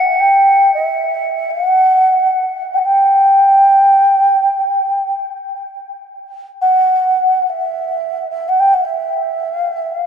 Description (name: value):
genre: world meditative, free-time meditation music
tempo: free time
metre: none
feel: none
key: unclear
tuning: A4 = 440 Hz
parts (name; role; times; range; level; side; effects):
- mellow xiao; melody; 0.0-10.1 s; E5 to G5; -12 LUFS; equal; ping-pong delay
- crotales; texture; 0.0-7.5 s; B6 to C#7; -25 LUFS; equal; none
room: moderate huge ambient reverb, RT60 6.7 s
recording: dark, warm production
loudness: -11 LUFS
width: side -8 dB against mid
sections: 0.0-10.1 A section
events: none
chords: none